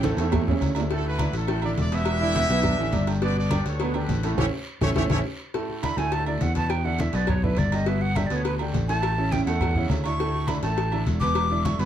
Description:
latin, salsa; 207 BPM; 4/4; straight; D major; A4 = 440 Hz
bright trumpet section; melody; 0.0-5.2 s; C#4 to E5; -30 LUFS; equal
bright baby grand piano; accompaniment; 0.0-11.9 s; A2 to B4; -30 LUFS; right 4 dB
fingered electric bass; bass; 0.0-11.9 s; E1 to E2; -26 LUFS; left 1 dB
congas; percussion; 0.0-11.9 s; -28 LUFS; left 1 dB
cowbell; percussion; 0.0-11.9 s; -34 LUFS; left 6 dB
guiro; percussion; 0.0-11.9 s; -43 LUFS; right 2 dB
timbales and agogo bells; percussion; 0.0-11.8 s; -34 LUFS; right 8 dB
brilliant trombone section; second line; 2.2-5.2 s; A3 to E4; -31 LUFS; equal
breathy bright jazz flute; melody; 5.8-11.9 s; B4 to D6; -28 LUFS; right 1 dB
moderate studio reverb, RT60 0.6 s; dark, warm production; -22 LUFS; side -10 dB against mid
0.0-5.5 A section; 5.5-11.9 B section
drum fill 0.0-0.9, 5.0-5.5; band accent 4.4-5.5; flute solo 5.5-11.9
0.0 A7; 0.9 Dadd9; 2.1 Em7; 3.2 Gadd9; 4.4 A; 5.5 Dsus2; 6.7 Em7; 7.9 Gadd9; 9.0 A; 10.2 Dsus2

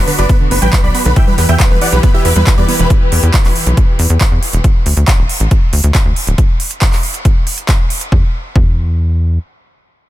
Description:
uplifting trance; 138 BPM; 4/4; straight; A4 = 442 Hz
big supersaw lead; melody; 0.0-2.9 s; G4 to B5; -18 LUFS; right 1 dB; sidechain pumping, ping-pong delay
clear studio string section; sustained chords; 0.0-4.6 s; E3 to B4; -21 LUFS; left 1 dB; sidechain pumping
tight sequencer bass; bass; 0.0-9.4 s; D1 to E2; -12 LUFS; equal; sidechain pumping
analog pluck; arpeggios; 0.1-2.8 s; D3 to B3; -21 LUFS; right 4 dB; chorus, cassette tape, sidechain pumping, ping-pong delay
big-room dance drum kit; drums; 0.1-8.1 s; handclaps, hi-hat; -19 LUFS; right 1 dB
electronic kick drum; drums; 0.3-8.7 s; -11 LUFS; equal
digital ambience; dense, heavily limited modern master; -10 LUFS; side -15 dB against mid
0.0-8.1 A section; 8.1-10.1 B section
drop 0.0-8.1
0.0 Bm; 1.2 Em; 4.6 D5; 8.1 N.C.

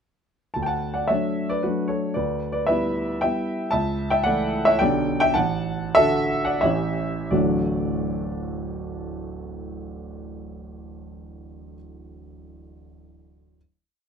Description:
classical, romantic triple-time dance for piano with dotted rhythms; 80-121 BPM; 3/4; rubato; D major; A4 = 438 Hz
warm grand piano; solo; 0.5-13.6 s; D1 to A5; -22 LUFS; equal
light reverb; -21 LUFS; side -7 dB against mid
0.6-7.3 A section; 7.3-11.5 final chord
slowing down 3.0-7.3
0.6 D; 2.2 Em7/D; 3.7 A/C#; 4.8 G/B; 5.3 D/A; 6.6 A7; 7.3 D

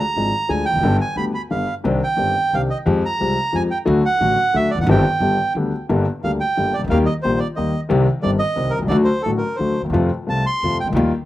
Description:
tango; 178 BPM; 3/4; rubato; G minor from 5.9 s; A4 = 439 Hz
bandoneon; melody; 0.0-10.9 s; A4 to C6; -21 LUFS; right 3 dB; slapback echo
warm concert grand piano; accompaniment; 0.2-11.1 s; G1 to Ab4; -19 LUFS; left 2 dB; slapback echo
upright bass; bass; 0.2-11.1 s; E1 to F2; -23 LUFS; right 1 dB
little or no reverb; recorded outdoors, with no room sound; -16 LUFS; side -14 dB against mid
0.0-5.9 A section; 5.9-11.3 B section
0.0 Ddim; 0.8 G; 1.8 Cmadd9; 2.9 Fmadd9; 3.9 D; 4.9 Cm/G; 5.2 G; 5.9 Gm; 6.9 Eb; 7.9 Cm; 8.9 D; 9.9 F

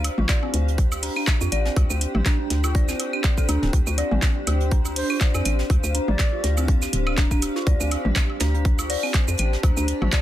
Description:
minimal techno; 122 BPM; 4/4; swing 55% on 16ths; D minor; A4 = 437 Hz
hollow knocking FM bass; bass; 0.0-10.1 s; D1 to F2; -23 LUFS; equal; sidechain pumping
booming analog drum machine; drums; 0.0-10.2 s; handclaps, hi-hat, shaker; -28 LUFS; right 1 dB; overdrive
soft brush drum kit; drums; 0.0-10.2 s; hi-hat, snare drum; -35 LUFS; right 3 dB; sidechain pumping on hats, high-pass filter on hats, soft clipping on snare, high-pass filter on snare, high-pass filter on room
electronic woodblock, toms and claves; percussion; 0.0-10.1 s; -31 LUFS; equal; overdrive, ping-pong delay
granular cloud pad; texture; 0.0-10.2 s; D4 to A5; -30 LUFS; right 1 dB; built-in reverb, sidechain pumping
dark detuned synth bell; riff; 0.2-10.2 s; C4 to D5; -29 LUFS; left 1 dB; chorus, phaser, sidechain pumping, ping-pong delay
electronic kick drum; drums; 0.3-10.2 s; -20 LUFS; equal
mellow hollow jazz flute; melody; 5.0-6.4 s; C5 to D5; -34 LUFS; equal; ping-pong delay
light reverb; dense, heavily limited modern master; -19 LUFS; side -13 dB against mid
0.0-10.2 A section
0.0 Dm

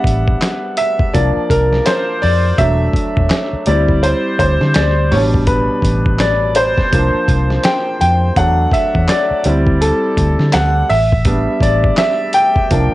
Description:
R&B, neo-soul; 83 BPM; 4/4; swing 59% on 16ths; A4 = 440 Hz
clear upright piano; accompaniment; 0.0-12.9 s; B2 to G5; -14 LUFS; equal; cassette tape
vintage muted fingered electric bass; bass; 0.0-12.9 s; E1 to D3; -16 LUFS; equal
dusty soul sampler-style drum kit; drums; 0.0-12.9 s; handclaps, hi-hat, kick drum, snare drum; -18 LUFS; equal
light reverb; home recording on cassette; -12 LUFS; side -17 dB against mid
0.0-12.9 A section
upright piano solo 0.0-12.9
0.0 A9sus4; 1.1 C9sus4; 2.6 E9sus4; 3.7 D9sus4; 5.1 A9sus4; 6.9 C9sus4; 8.4 E9sus4; 9.4 D9sus4; 10.9 A9sus4

